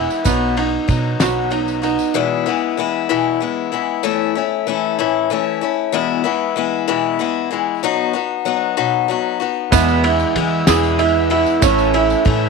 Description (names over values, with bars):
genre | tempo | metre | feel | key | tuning
indie folk with a building arrangement | 63 BPM (dotted quarters) | 6/8 | straight | E major | A4 = 437 Hz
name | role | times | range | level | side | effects
picked old ladder-braced acoustic guitar | accompaniment | 0.0-12.5 s | E2 to F#4 | -18 LUFS | left 11 dB | none
clear upright piano | arpeggios | 0.0-2.1, 9.7-12.5 s | B3 to G#4 | -18 LUFS | right 14 dB | none
upright bass | bass | 0.0-2.0, 9.7-12.5 s | A1 to E3 | -22 LUFS | right 2 dB | none
tambourine | percussion | 0.1-2.1, 9.7-12.2 s | none | -28 LUFS | right 17 dB | none
cloth-damped thuddy drum kit | drums | 0.3-2.0, 9.7-12.4 s | kick drum, ride cymbal, snare drum | -22 LUFS | left 1 dB | none
warm concert grand piano | accompaniment | 9.7-12.5 s | A1 to E5 | -24 LUFS | right 14 dB | none
room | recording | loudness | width
light reverb | 1960s-style stereo with parts hard left and right | -15 LUFS | side -4 dB against mid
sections
0.0-2.1 A section; 2.1-12.5 A section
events
none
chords
0.3 B; 2.1 E; 4.0 A; 5.9 E; 7.8 B; 9.7 E; 11.6 A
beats
| 0.25 1.20 | 2.15 3.09 | 4.04 4.99 | 5.93 6.88 | 7.83 8.78 | 9.72 10.67 | 11.62